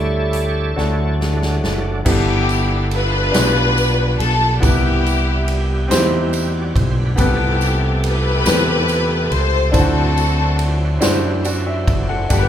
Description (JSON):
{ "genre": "slow gospel", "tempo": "47 BPM (dotted quarters)", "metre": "6/8", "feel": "straight", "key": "unclear", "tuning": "A4 = 439 Hz", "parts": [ { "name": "clear grand piano", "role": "accompaniment", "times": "0.0-12.5 s", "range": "G2 to F#5", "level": "-22 LUFS", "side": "equal", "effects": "none" }, { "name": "bright tonewheel organ", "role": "sustained chords", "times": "0.0-12.5 s", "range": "C3 to F#5", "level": "-25 LUFS", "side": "right 2 dB", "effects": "slow rotary speaker, overdrive, chorus vibrato" }, { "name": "fingered electric bass", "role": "bass", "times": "0.0-12.5 s", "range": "F#1 to F#2", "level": "-19 LUFS", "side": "equal", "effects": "none" }, { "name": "swinging big-band drum kit", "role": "drums", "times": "0.3-12.5 s", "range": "crash cymbal, hi-hat, kick drum, ride cymbal, snare drum", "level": "-22 LUFS", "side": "equal", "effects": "none" }, { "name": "rich studio string section", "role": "melody", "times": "2.1-12.5 s", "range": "B3 to C5", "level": "-20 LUFS", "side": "left 2 dB", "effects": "none" }, { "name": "tambourine", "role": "percussion", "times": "2.1-12.5 s", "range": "none", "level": "-30 LUFS", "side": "right 7 dB", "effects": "none" } ], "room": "moderate large studio reverb, RT60 0.8 s", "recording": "band playing live in one room", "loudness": "-15 LUFS", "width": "side -10 dB against mid", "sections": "0.0-2.1 A section; 2.1-12.5 B section", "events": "tonewheel organ solo 0.0-2.1; drum fill 0.8-2.1", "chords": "0.0 Dsus4; 0.8 D; 2.1 G69; 3.3 G7/B; 4.6 Cmaj7; 7.2 Am9/C; 9.7 D9" }